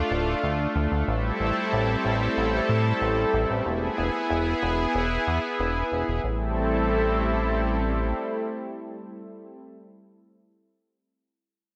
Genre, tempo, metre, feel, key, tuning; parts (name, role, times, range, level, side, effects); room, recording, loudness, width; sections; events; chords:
synthwave; 93 BPM; 4/4; straight; A minor; A4 = 440 Hz
lush unison pad; sustained chords; 0.0-9.6 s; G3 to A4; -28 LUFS; equal; chorus
chorused synth bass; bass; 0.0-8.1 s; D1 to A2; -29 LUFS; equal; tube saturation
wet lush hall reverb, RT60 1.5 s; bright 1980s-style digital production; -25 LUFS; mono
0.0-6.2 A section; 6.2-8.8 B section
0.0 Dm; 1.1 Am7; 3.7 E; 6.2 Am7